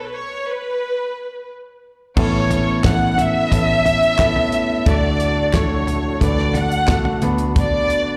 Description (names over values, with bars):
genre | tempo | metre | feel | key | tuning
piano-driven pop | 89 BPM | 4/4 | straight | A major | A4 = 440 Hz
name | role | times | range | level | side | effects
clear studio violin section | melody | 0.0-8.2 s | B4 to F#5 | -22 LUFS | equal | none
warm baby grand piano | accompaniment | 2.2-8.2 s | A2 to B4 | -25 LUFS | equal | slapback echo
tonewheel organ | sustained chords | 2.2-8.2 s | D3 to B4 | -30 LUFS | equal | none
vintage muted picked electric bass | bass | 2.2-8.2 s | A1 to D2 | -24 LUFS | equal | none
damped 70s drum kit | drums | 2.2-8.1 s | crash cymbal, handclaps, hi-hat, kick drum, snare drum, toms | -22 LUFS | equal | none
room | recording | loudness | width
light reverb, small room ambience | live gig heard through the venue's PA, recital hall reverb | -18 LUFS | mono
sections
0.0-2.2 A section; 2.2-8.2 B section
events
stop 0.0-2.2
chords
0.0 N.C.; 2.2 Aadd9; 4.9 D; 7.2 Bm/D